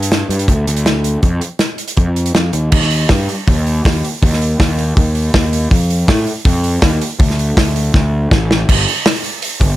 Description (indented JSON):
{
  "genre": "indie rock",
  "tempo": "161 BPM",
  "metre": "4/4",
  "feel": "straight",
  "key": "unclear",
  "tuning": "A4 = 439 Hz",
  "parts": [
    { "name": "fuzz picked electric bass", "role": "bass", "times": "0.0-9.8 s", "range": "G1 to A2", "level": "-15 LUFS", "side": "equal", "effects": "overdrive" },
    { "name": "loose indie drum kit", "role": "drums", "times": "0.0-9.7 s", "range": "crash cymbal, hi-hat, kick drum, snare drum", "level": "-14 LUFS", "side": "equal", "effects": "none" }
  ],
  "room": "little or no reverb",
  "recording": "none",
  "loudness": "-12 LUFS",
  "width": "side -15 dB against mid",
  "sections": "0.0-2.7 A section; 2.7-8.7 B section; 8.7-9.8 C section",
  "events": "drum fill 7.9-8.7",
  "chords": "none",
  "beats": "0.12 0.49 0.86 | 1.24 1.61 1.98 2.36 | 2.73 3.10 3.48 3.85 | 4.22 4.59 4.97 5.34 | 5.71 6.08 6.46 6.83 | 7.20 7.57 7.94 8.31 | 8.69 9.06 9.43"
}